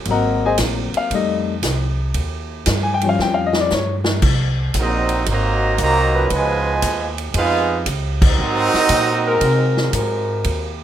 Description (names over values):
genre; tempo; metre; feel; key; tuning
jazz, big band swing; 116 BPM; 4/4; swing 68% on 8ths; Ab major; A4 = 440 Hz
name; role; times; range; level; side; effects
clear concert grand piano; accompaniment; 0.0-3.9 s; F3 to Bb5; -18 LUFS; left 5 dB; none
upright bass; bass; 0.0-10.8 s; Ab1 to C3; -21 LUFS; equal; none
swinging big-band drum kit; drums; 0.1-10.6 s; crash cymbal, hi-hat, kick drum, ride cymbal, snare drum; -22 LUFS; right 1 dB; none
bright trumpet section; melody; 4.8-9.8 s; C4 to Bb5; -20 LUFS; right 1 dB; none
clear trombone section; second line; 4.8-9.7 s; Cb3 to F4; -21 LUFS; right 4 dB; none
warm trombone section; sustained chords; 6.1-10.7 s; F3 to Cb5; -20 LUFS; left 1 dB; none
room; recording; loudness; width
light reverb; rough home demo mix; -16 LUFS; side -10 dB against mid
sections
0.0-4.2 A section; 4.2-10.8 B section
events
grand piano solo 0.0-4.2; drum fill 3.2-4.2; band accent 8.1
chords
0.1 Ab9; 1.1 F7; 2.2 Eb9; 4.2 Ab9; 6.3 Db9; 8.4 Ab9